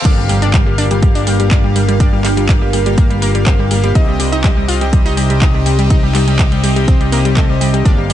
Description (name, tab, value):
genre	progressive house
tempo	123 BPM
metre	4/4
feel	straight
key	G minor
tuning	A4 = 445 Hz
part	soft supersaw	stabs	0.0-8.1 s	G2 to F5	-19 LUFS	left 2 dB	sidechain pumping, digital delay
part	reverse cymbal and impact	sound effects	0.0-2.0 s	none	-27 LUFS	equal	none
part	evolving wavetable pad	sustained chords	0.1-8.1 s	C3 to Bb4	-22 LUFS	right 1 dB	phaser, built-in reverb, sidechain pumping
part	analog pluck	arpeggios	0.1-8.1 s	G3 to F4	-20 LUFS	equal	chorus, cassette tape, sidechain pumping, digital delay
part	fat analog bass	bass	0.1-8.1 s	G1 to C2	-16 LUFS	equal	sidechain pumping
part	electronic kick drum	drums	0.1-8.0 s	none	-12 LUFS	equal	overdrive, high-pass filter on kick, high-pass filter on room
part	pop drum kit	drums	0.1-8.1 s	crash cymbal, handclaps, hi-hat	-22 LUFS	equal	none
room	little or no reverb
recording	high-pass filter, nothing above 10.4 kHz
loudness	-10 LUFS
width	side -12 dB against mid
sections	0.1-8.1 A section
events	drop 0.1-8.1; impact 0.1-2.0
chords	0.1 Gm7; 4.0 Cm